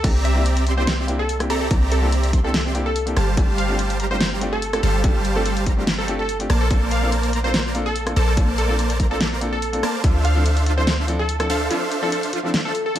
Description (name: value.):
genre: future bass.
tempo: 144 BPM.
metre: 4/4.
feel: half-time.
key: unclear.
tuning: A4 = 440 Hz.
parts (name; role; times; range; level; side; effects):
plucky unison lead; melody; 0.0-13.0 s; A4 to F5; -26 LUFS; equal; lush chorus, sidechain pumping, digital delay.
warm grand piano; accompaniment; 0.0-13.0 s; F3 to A4; -28 LUFS; left 1 dB; sidechain pumping, digital delay.
wide unison pluck; arpeggios; 0.0-12.7 s; F4 to C6; -33 LUFS; right 1 dB; sidechain pumping, digital delay.
supersaw chords; riff; 0.0-12.7 s; G3 to C6; -25 LUFS; right 1 dB; sidechain pumping.
warm 808-style bass; bass; 0.0-11.7 s; G1 to D2; -22 LUFS; equal; sidechain pumping.
big-room dance drum kit; drums; 0.0-13.0 s; crash cymbal, hi-hat, rim click, snare drum; -25 LUFS; equal; none.
electronic kick drum; drums; 0.0-10.1 s; none; -18 LUFS; equal; none.
room: light reverb, digital ambience.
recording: none.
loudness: -18 LUFS.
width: side -12 dB against mid.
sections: 0.0-13.0 A section.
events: break 11.7-13.0.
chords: 0.0 C7; 3.2 G7sus4; 6.5 Bbmaj9; 10.0 Dm9.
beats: | 0.04 0.46 0.87 1.29 | 1.71 2.12 2.54 2.96 | 3.37 3.79 4.21 4.62 | 5.04 5.46 5.87 6.29 | 6.71 7.12 7.54 7.96 | 8.37 8.79 9.21 9.62 | 10.04 10.46 10.87 11.29 | 11.71 12.12 12.54 12.96.